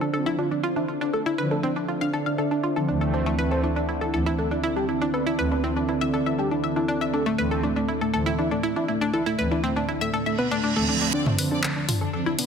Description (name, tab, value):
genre	melodic techno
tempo	120 BPM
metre	4/4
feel	straight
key	D minor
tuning	A4 = 440 Hz
part	wide unison lead	melody	0.0-12.5 s	D3 to C5	-27 LUFS	left 1 dB	cassette tape, ping-pong delay
part	analog pluck	arpeggios	0.0-12.4 s	A3 to F5	-28 LUFS	equal	chorus, ping-pong delay
part	analog drone	drone	0.0-12.5 s	D3 to D4	-36 LUFS	equal	chorus
part	deep dark ambient pad	texture	0.0-12.5 s	D3 to F5	-31 LUFS	right 3 dB	chorus, built-in reverb
part	brassy analog pad	stabs	0.1-12.3 s	D2 to C4	-28 LUFS	right 1 dB	chorus, cassette tape, ping-pong delay
part	reverse cymbal and riser	sound effects	10.3-12.5 s	none	-28 LUFS	right 6 dB	none
part	clear studio violin section	second line	11.1-12.5 s	D4 to D5	-34 LUFS	left 2 dB	ping-pong delay
part	house drum kit	drums	11.3-12.5 s	handclaps, hi-hat, toms	-25 LUFS	equal	low-pass filter on toms, low-pass filter on hats, low-pass filter on snare
room	moderate scoring stage reverb, RT60 1.9 s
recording	dense, heavily limited modern master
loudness	-22 LUFS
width	side -6 dB against mid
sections	0.0-11.1 A section; 11.1-12.5 B section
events	reverse cymbal 10.3-11.1; build-up 11.1-12.5; riser 11.1-12.5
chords	0.0 Dm7